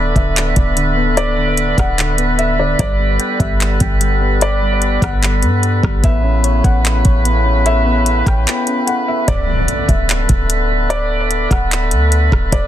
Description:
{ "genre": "hip hop, atmospheric cloud-rap", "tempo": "148 BPM", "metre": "4/4", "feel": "half-time", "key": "D major", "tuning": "A4 = 440 Hz", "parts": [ { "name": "felt-muted upright piano", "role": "melody", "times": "0.0-12.7 s", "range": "D5 to G5", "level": "-22 LUFS", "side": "equal", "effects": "low-pass filter, tape echo" }, { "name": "warm woodwind section", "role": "sustained chords", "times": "0.0-12.7 s", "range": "C#3 to B4", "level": "-19 LUFS", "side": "equal", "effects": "sidechain pumping" }, { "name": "soft electric-piano-like synth keys", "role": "arpeggios", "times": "0.0-9.3 s", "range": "D3 to G5", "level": "-22 LUFS", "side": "left 2 dB", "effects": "chorus, low-pass filter, tape echo" }, { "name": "clean 808-style bass", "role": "bass", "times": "0.0-12.7 s", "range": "D1 to G2", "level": "-16 LUFS", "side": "equal", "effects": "none" }, { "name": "smooth R&B drum kit", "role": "drums", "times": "0.2-12.6 s", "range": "handclaps, hi-hat, kick drum, rim click", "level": "-17 LUFS", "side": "equal", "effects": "none" }, { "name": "impact", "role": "sound effects", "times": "9.3-10.9 s", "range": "none", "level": "-25 LUFS", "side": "equal", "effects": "none" } ], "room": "digital ambience", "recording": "dense, heavily limited modern master", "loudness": "-12 LUFS", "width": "side -12 dB against mid", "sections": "0.0-9.3 A section; 9.3-12.7 B section", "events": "break 8.5-9.3; impact 9.3-10.9", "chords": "0.0 D6; 2.8 Gmaj7; 6.0 Aadd9; 9.3 D5", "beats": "0.36 0.77 | 1.17 1.58 1.98 2.39 | 2.79 3.20 3.60 4.01 | 4.42 4.82 5.23 5.63 | 6.04 6.44 6.85 7.25 | 7.66 8.06 8.47 8.88 | 9.28 9.69 10.09 10.50 | 10.90 11.31 11.71 12.12 | 12.52" }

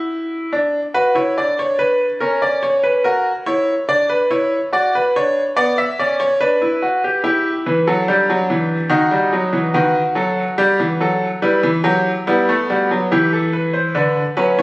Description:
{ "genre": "classical, baroque-style 3-part fugue for grand piano", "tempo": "72 BPM", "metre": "4/4", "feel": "straight", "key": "E minor", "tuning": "A4 = 440 Hz", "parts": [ { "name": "bright grand piano", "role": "solo", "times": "0.0-14.6 s", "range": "D3 to E5", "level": "-14 LUFS", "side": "equal", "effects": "none" } ], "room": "moderate recital hall reverb, RT60 1.6 s", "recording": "recorded on a phone in the room, studio ambience, compression", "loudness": "-14 LUFS", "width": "side -22 dB against mid", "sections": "0.0-14.6 A section", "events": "none", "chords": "0.0 N.C.; 0.5 Bm/D; 2.2 F#7/C#; 3.9 Bm/D; 5.6 Bm; 7.2 Em; 8.9 B7/D#; 10.6 Em; 14.0 Bm/D", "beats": "| 0.53 1.37 2.21 3.05 | 3.88 4.72 5.56 6.40 | 7.23 8.07 8.91 9.75 | 10.59 11.43 12.27 13.11 | 13.96" }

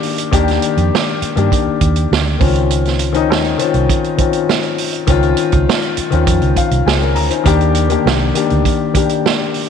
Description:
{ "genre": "lush 1970s-style soul", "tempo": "101 BPM", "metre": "4/4", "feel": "straight", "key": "unclear", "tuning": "A4 = 440 Hz", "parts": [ { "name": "warm grand piano", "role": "accompaniment", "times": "0.0-9.7 s", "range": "Eb3 to Bb5", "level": "-16 LUFS", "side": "left 8 dB", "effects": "none" }, { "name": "vintage drum kit", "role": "drums", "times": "0.0-9.7 s", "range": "hi-hat, kick drum, snare drum", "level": "-17 LUFS", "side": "right 5 dB", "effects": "none" }, { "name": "vintage muted fingered electric bass", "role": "bass", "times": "0.3-8.6 s", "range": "C2 to G2", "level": "-16 LUFS", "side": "right 2 dB", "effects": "none" } ], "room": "moderate echo chamber reverb, RT60 2.1 s", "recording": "1960s-style stereo", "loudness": "-12 LUFS", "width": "side -7 dB against mid", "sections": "0.0-9.7 A section", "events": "grand piano fill 6.3-7.5", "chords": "0.0 Ebmaj7; 2.4 Dbmaj9; 7.5 Ebmaj7", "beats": "| 0.32 0.92 1.51 2.11 | 2.70 3.29 3.89 4.48 | 5.08 5.67 6.27 6.86 | 7.46 8.05 8.65 9.25" }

